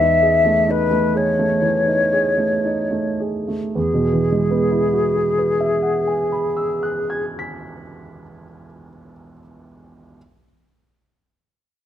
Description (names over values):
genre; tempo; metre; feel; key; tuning
classical, impressionist duo for flute and grand piano; 51-69 BPM; 4/4; rubato; E major; A4 = 437 Hz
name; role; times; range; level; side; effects
mellow concert flute; melody; 0.0-7.2 s; G#4 to E5; -18 LUFS; left 2 dB; none
warm grand piano; accompaniment; 0.0-10.2 s; E2 to B6; -21 LUFS; right 2 dB; none
room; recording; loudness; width
moderate recital hall reverb, RT60 1.4 s; close, detailed microphones, faint mains hum; -16 LUFS; side -10 dB against mid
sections
0.0-3.7 A section; 3.7-7.9 B section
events
slowing down 0.0-3.7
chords
0.0 Amaj7#11/E; 3.7 Eadd9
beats
0.69 1.61 2.63 | 3.75 4.81 5.85 6.89